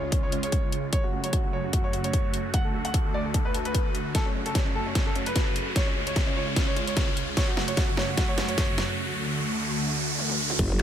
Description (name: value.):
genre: heavy wobble dubstep.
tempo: 149 BPM.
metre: 4/4.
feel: swing 54% on 16ths, half-time.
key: F# harmonic minor.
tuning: A4 = 439 Hz.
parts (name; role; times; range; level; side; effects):
clear baby grand piano; melody; 0.0-8.9 s; C#4 to F#5; -32 LUFS; equal; digital delay.
supersaw pad; sustained chords; 0.0-10.8 s; C#2 to F#4; -31 LUFS; right 1 dB; phaser, sidechain pumping.
riser and impact; sound effects; 0.3-10.8 s; none; -33 LUFS; equal; none.
dubstep drum kit; drums; 0.1-10.8 s; crash cymbal, finger snaps, hi-hat, snare drum, toms; -31 LUFS; left 1 dB; high-pass filter on snare, high-pass filter on hats, high-pass filter on toms, high-pass filter on cymbals, high-pass filter on room.
electronic kick drum; drums; 0.1-10.7 s; none; -26 LUFS; equal; none.
growl bass; bass; 10.6-10.8 s; F#1; -25 LUFS; equal; chorus, overdrive.
room: light reverb.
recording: none.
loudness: -24 LUFS.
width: side -10 dB against mid.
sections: 0.0-10.6 A section.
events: build-up 0.0-10.6; riser 0.3-10.6; drum fill 4.1-9.0, 10.2-10.6; break 9.0-10.6; impact 10.6.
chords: 0.0 C#; 0.9 F#m; 2.5 D; 4.1 F#m; 5.8 C#; 7.4 F#m; 9.0 D.